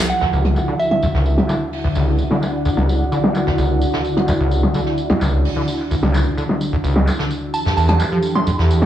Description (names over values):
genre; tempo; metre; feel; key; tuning
acid house; 129 BPM; 4/4; straight; D major; A4 = 439 Hz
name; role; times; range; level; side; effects
warm analog pad; sustained chords; 0.0-8.9 s; D2 to A4; -22 LUFS; left 1 dB; chorus
deep dark ambient pad; texture; 0.0-8.9 s; D4 to G5; -26 LUFS; right 2 dB; chorus, built-in reverb
soft synth bell; melody; 0.1-1.0, 7.5-8.7 s; E5 to C6; -23 LUFS; right 3 dB; chorus, dub echo
jazz brush drum kit; drums; 0.1-8.9 s; hi-hat, snare drum, tambourine; -31 LUFS; right 2 dB; high-pass filter on hats, low-pass filter on hats, high-pass filter on snare, low-pass filter on snare, high-pass filter on perc, low-pass filter on perc, high-pass filter on room, low-pass filter on room
overdriven acid bass; riff; 0.2-8.9 s; C#2 to F3; -18 LUFS; equal; distortion, tube saturation, analog chorus, vintage 12-bit sampler grit
electronic snare drum and handclaps; drums; 0.4-8.9 s; none; -21 LUFS; equal; low-pass filter on hats, low-pass filter on cymbals, low-pass filter on snare, low-pass filter on room
room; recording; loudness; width
moderate spring reverb, RT60 1.7 s, studio ambience; studio reverb; -15 LUFS; side -11 dB against mid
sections
0.1-8.9 A section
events
none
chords
0.1 Dmaj9; 7.5 Fmaj9